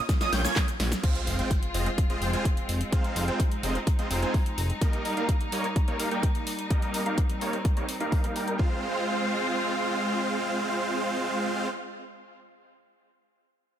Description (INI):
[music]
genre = EDM, festival progressive house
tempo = 127 BPM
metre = 4/4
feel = straight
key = F minor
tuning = A4 = 440 Hz
[part]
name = big-room dance drum kit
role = drums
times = 0.1-8.6 s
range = crash cymbal, handclaps, hi-hat, ride cymbal, shaker, snare drum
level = -34 LUFS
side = equal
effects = none
[part]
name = electronic kick drum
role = drums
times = 0.1-8.7 s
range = none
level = -25 LUFS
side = equal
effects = none
[part]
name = wide unison lead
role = arpeggios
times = 0.2-0.6 s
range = Eb6 to Ab6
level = -31 LUFS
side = right 4 dB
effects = lush chorus, sidechain pumping, tape echo
[part]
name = supersaw chords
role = riff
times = 0.2-11.7 s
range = G3 to Ab5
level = -29 LUFS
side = right 1 dB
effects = sidechain pumping, low-pass filter, tape echo
[part]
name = fat analog bass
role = bass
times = 0.3-4.7 s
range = F1 to Bb1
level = -28 LUFS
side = equal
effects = tube saturation, sidechain pumping
[part]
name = clear studio string section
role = sustained chords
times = 1.0-11.7 s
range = G3 to F4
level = -34 LUFS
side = left 1 dB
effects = sidechain pumping
[part]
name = sub drop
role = sound effects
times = 1.0-2.9 s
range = none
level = -37 LUFS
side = left 1 dB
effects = none
[sound]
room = light reverb, digital ambience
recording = none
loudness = -25 LUFS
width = side -10 dB against mid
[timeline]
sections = 0.0-1.0 A section; 1.0-8.6 B section; 8.6-12.4 C section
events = drop 0.0-1.0; drum fill 0.1-1.0; impact 1.0-2.9; filter sweep on supersaw synth 1.0-8.6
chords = 0.0 Bbm; 1.0 Fm; 4.8 Eb; 8.6 Fm